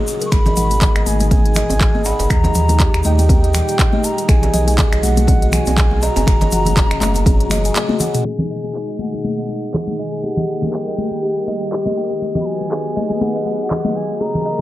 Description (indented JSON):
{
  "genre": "afro house",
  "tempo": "121 BPM",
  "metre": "4/4",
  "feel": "swing 56% on 16ths",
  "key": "G# minor",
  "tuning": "A4 = 440 Hz",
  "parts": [
    { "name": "warm analog pad", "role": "sustained chords", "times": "0.0-14.6 s", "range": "A#2 to B4", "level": "-26 LUFS", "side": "equal", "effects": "chorus, sidechain pumping" },
    { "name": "buzzing kalimba", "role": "arpeggios", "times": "0.0-14.6 s", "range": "G4 to G#5", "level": "-22 LUFS", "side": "equal", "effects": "sidechain pumping, low-pass filter, analog delay" },
    { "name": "egg shaker", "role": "percussion", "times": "0.1-8.2 s", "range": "none", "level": "-30 LUFS", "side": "left 3 dB", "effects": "none" },
    { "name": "afro-pop drum kit", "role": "drums", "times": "0.2-13.8 s", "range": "finger snaps, handclaps, hi-hat, toms", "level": "-22 LUFS", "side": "equal", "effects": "low-pass filter on snare, studio ambience, low-pass filter on hats, low-pass filter on toms" },
    { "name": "bansuri", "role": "melody", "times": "0.3-14.6 s", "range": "F#5 to C#6", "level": "-26 LUFS", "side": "equal", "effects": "analog delay" },
    { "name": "warm sub bass", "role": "bass", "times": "0.3-7.7 s", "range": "F#1 to D#2", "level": "-18 LUFS", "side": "equal", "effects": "sidechain pumping" },
    { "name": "electronic kick drum", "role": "drums", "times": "0.3-7.4 s", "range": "none", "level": "-15 LUFS", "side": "equal", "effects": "studio ambience" },
    { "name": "congas", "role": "percussion", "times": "0.3-14.6 s", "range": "none", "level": "-24 LUFS", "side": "left 2 dB", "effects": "tape echo" },
    { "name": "djembe", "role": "percussion", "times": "0.5-7.6 s", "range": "none", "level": "-26 LUFS", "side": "right 2 dB", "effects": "none" }
  ],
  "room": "light reverb, small room ambience",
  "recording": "echo-heavy mix, low-pass filter",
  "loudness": "-14 LUFS",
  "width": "side -15 dB against mid",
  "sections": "0.0-8.3 A section; 8.3-14.6 B section",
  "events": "break 7.8-8.3; drum fill 7.8-8.3; filter sweep on kalimba 8.3-14.6; filter sweep 8.3-14.6",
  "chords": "0.3 G#m; 2.3 D#; 4.3 B; 6.3 F#; 8.3 G#m; 10.2 D#; 12.2 B"
}